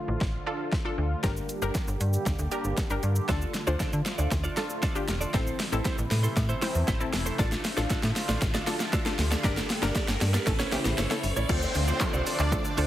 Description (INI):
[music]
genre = dance-pop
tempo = 117 BPM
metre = 4/4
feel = straight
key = D minor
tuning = A4 = 440 Hz
[part]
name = wide unison pluck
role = accompaniment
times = 0.0-12.9 s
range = A3 to C5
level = -34 LUFS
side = moving between left 4 dB and right 2 dB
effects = auto-pan, sidechain pumping
[part]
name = sweeping resonant pad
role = sustained chords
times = 0.0-12.9 s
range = C3 to G4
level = -37 LUFS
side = equal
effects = chorus, sidechain pumping
[part]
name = slap-like FM bass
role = bass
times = 0.1-12.9 s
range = E1 to D3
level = -28 LUFS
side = equal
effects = sidechain pumping
[part]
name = deep house drum kit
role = drums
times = 0.2-12.9 s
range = crash cymbal, handclaps, hi-hat, kick drum, shaker, snare drum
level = -29 LUFS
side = equal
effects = overdrive
[part]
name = direct-recorded clean electric guitar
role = riff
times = 3.3-12.9 s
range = C4 to D5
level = -36 LUFS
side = right 4 dB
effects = analog chorus
[part]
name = riser and downlifter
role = sound effects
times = 6.0-12.9 s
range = none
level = -38 LUFS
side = equal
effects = none
[part]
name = supersaw pad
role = melody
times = 11.5-12.9 s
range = C4 to D5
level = -32 LUFS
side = right 1 dB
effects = sidechain pumping
[sound]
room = light reverb, digital ambience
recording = heavily compressed radio sound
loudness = -25 LUFS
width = side -13 dB against mid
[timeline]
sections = 0.0-11.5 A section; 11.5-12.9 B section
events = build-up 0.0-11.5; drum fill 0.0-11.5; drop 11.5-12.9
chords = 0.0 Dm/A; 1.2 Gm; 3.3 Dm; 5.3 Am; 7.4 Dm/A; 9.4 Gm; 10.5 A; 11.5 Dm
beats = 0.21 0.73 | 1.24 1.75 2.26 2.78 | 3.29 3.80 4.32 4.83 | 5.34 5.85 6.37 6.88 | 7.39 7.91 8.42 8.93 | 9.44 9.96 10.47 10.98 | 11.49 12.01 12.52